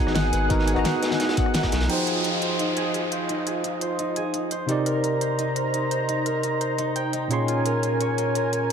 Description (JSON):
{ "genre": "liquid drum and bass", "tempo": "172 BPM", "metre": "4/4", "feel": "straight", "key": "F minor", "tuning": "A4 = 440 Hz", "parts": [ { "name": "tine electric piano", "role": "accompaniment", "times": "0.0-8.7 s", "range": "Bb2 to C6", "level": "-26 LUFS", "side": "equal", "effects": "medium stereo tremolo, digital delay" }, { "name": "lush unison pad", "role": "sustained chords", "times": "0.0-8.7 s", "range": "Db4 to Bb5", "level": "-28 LUFS", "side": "equal", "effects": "chorus, sidechain pumping" }, { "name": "concert harp", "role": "arpeggios", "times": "0.0-8.7 s", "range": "Eb4 to G5", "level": "-28 LUFS", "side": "equal", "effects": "low-pass filter, digital delay" }, { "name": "saturated sub bass", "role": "bass", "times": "0.1-1.9 s", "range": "Ab1 to Cb2", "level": "-25 LUFS", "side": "equal", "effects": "none" }, { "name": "crunchy breakbeat drum kit", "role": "drums", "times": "0.1-1.9 s", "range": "hi-hat, snare drum", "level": "-32 LUFS", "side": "left 1 dB", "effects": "high-pass filter on hats, high-pass filter on snare, high-pass filter on room" }, { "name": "pop drum kit", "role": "drums", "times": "0.1-8.7 s", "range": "crash cymbal, hi-hat, rim click, snare drum", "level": "-30 LUFS", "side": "equal", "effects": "none" }, { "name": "electronic kick drum", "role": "drums", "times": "0.5-1.7 s", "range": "none", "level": "-25 LUFS", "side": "equal", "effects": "none" }, { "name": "downlifter", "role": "sound effects", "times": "1.9-4.7 s", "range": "none", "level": "-30 LUFS", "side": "equal", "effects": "none" } ], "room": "light reverb, studio ambience", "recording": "none", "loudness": "-22 LUFS", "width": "side -7 dB against mid", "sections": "0.0-1.9 A section; 1.9-8.7 B section", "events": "none", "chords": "0.0 Abm7; 1.9 Fm7; 4.7 Cm7; 7.3 Bbm7" }